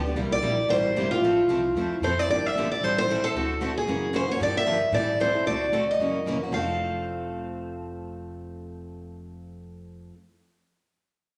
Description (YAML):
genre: acoustic string swing (jazz manouche)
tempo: 227 BPM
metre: 4/4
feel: swing 57% on 8ths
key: F major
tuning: A4 = 439 Hz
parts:
  - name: picked steel-string acoustic guitar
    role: melody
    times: 0.0-10.1 s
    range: F4 to F5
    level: -27 LUFS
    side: equal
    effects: none
  - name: upright bass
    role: bass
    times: 0.0-10.1 s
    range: F1 to A2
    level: -38 LUFS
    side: equal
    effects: none
  - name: picked steel-string acoustic guitar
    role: accompaniment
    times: 0.1-10.2 s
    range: C3 to A4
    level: -34 LUFS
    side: equal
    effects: none
  - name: picked steel-string acoustic guitar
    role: accompaniment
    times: 0.2-10.1 s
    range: C3 to Bb4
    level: -38 LUFS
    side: equal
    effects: none
room: wet large studio reverb, RT60 1.2 s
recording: none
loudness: -25 LUFS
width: mono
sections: 0.0-2.3 A section; 2.3-6.5 B section; 6.5-8.6 C section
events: none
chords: 0.2 C7; 1.2 Fmaj7; 2.3 Gm7; 2.8 Am7; 3.3 D7; 3.9 Gb9; 4.4 Gm7; 4.9 Am7; 5.5 D7; 6.0 Gb6; 6.5 F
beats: | 0.17 0.43 0.69 0.96 | 1.22 1.49 1.75 2.02 | 2.28 2.55 2.81 3.08 | 3.34 3.60 3.87 4.13 | 4.40 4.66 4.93 5.19 | 5.46 5.72 5.99 6.25 | 6.51 6.78 7.04 7.31 | 7.57 7.84 8.10 8.37